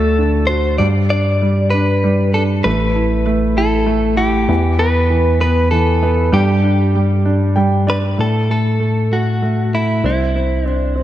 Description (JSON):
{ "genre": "six-eight pop ballad", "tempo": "65 BPM (dotted quarters)", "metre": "6/8", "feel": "straight", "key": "G major", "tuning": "A4 = 439 Hz", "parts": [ { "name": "direct-recorded clean electric guitar", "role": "melody", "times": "0.0-10.9 s", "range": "E4 to D5", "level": "-19 LUFS", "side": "left 1 dB", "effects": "tape echo" }, { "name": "warm concert grand piano", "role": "accompaniment", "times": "0.0-11.0 s", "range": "D3 to G5", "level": "-18 LUFS", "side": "right 2 dB", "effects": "none" }, { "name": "bell-like tine electric piano", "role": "bass", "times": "0.0-11.0 s", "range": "A1 to A2", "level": "-17 LUFS", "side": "equal", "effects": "medium stereo tremolo" } ], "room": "moderate lush hall reverb, RT60 2.3 s", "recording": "dreamy mix soaked in reverb", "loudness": "-13 LUFS", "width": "side -12 dB against mid", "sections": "0.0-8.2 A section; 8.2-11.0 B section", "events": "grand piano fill 7.3-8.2", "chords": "0.0 D; 0.8 G; 2.7 Asus2; 4.5 E5; 6.3 G5; 8.2 F#m/A; 10.0 C", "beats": "| 0.81 1.73 | 2.66 3.58 | 4.50 5.42 | 6.33 7.26 | 8.19 9.12 | 10.04 10.97" }